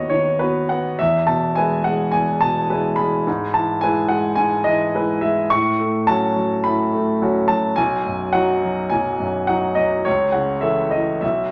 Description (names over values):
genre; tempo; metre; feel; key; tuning
classical, romantic character piece for solo piano; 106 BPM; 4/4; rubato; E major; A4 = 440 Hz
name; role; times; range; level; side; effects
clear grand piano; solo; 0.0-11.5 s; B1 to C#6; -19 LUFS; equal; none
room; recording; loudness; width
moderate large studio reverb, RT60 0.9 s; none; -19 LUFS; mono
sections
0.0-11.5 A section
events
none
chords
0.0 B/D#; 1.0 E; 3.3 E/G#; 5.5 F#m/A; 7.8 B; 10.1 A/C#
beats
0.40 | 0.99 1.56 2.14 2.69 | 3.27 3.82 4.38 4.94 | 5.51 6.08 6.65 7.21 | 7.78 8.35 8.91 9.48 | 10.05 10.62 11.22